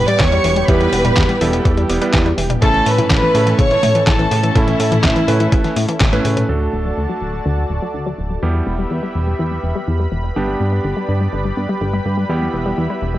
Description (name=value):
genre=italo disco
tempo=124 BPM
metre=4/4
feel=straight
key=E dorian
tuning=A4 = 440 Hz
part: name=warm chamber violin section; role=melody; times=0.0-6.0 s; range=E4 to D6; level=-18 LUFS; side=equal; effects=analog delay
part: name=lush unison pad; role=sustained chords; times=0.0-13.2 s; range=E3 to B5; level=-25 LUFS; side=equal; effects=chorus
part: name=wide unison pluck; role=arpeggios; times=0.0-13.2 s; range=C#3 to B3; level=-23 LUFS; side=left 2 dB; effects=analog delay
part: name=chorused synth bass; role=bass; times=0.0-13.2 s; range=D1 to A2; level=-19 LUFS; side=equal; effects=tube saturation
part: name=detuned 8-bit digital drum machine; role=drums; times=0.1-6.5 s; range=handclaps, hi-hat, snare drum, toms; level=-20 LUFS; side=left 1 dB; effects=overdrive
part: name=electronic kick drum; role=drums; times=0.2-6.1 s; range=none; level=-16 LUFS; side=equal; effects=overdrive
part: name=clear electric grand piano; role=stabs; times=0.7-13.2 s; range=G3 to B4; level=-22 LUFS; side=right 2 dB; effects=vintage 12-bit sampler grit, low-pass filter
room=digital ambience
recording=dry, gritty hardware recording, cassette tape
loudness=-14 LUFS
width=side -14 dB against mid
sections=0.0-6.5 A section; 6.5-13.2 B section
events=band accent 6.0; filter sweep on synth arpeggio sound 6.5-13.2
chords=0.0 Em; 2.6 A; 6.5 D; 8.4 Em; 10.4 G; 12.3 Em